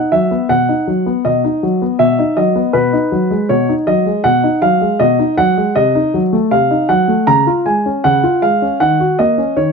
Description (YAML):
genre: classical-period piano sonatina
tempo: 79 BPM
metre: 4/4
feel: straight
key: unclear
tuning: A4 = 440 Hz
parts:
  - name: warm baby grand piano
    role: solo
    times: 0.0-9.7 s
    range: B2 to A#5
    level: -11 LUFS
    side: equal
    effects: none
room: light reverb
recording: dark, warm production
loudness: -11 LUFS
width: side -5 dB against mid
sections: 0.0-9.7 A section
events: none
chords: 0.0 B; 2.7 G#m7/B; 5.8 Cdim7; 7.3 C#; 8.8 D#m7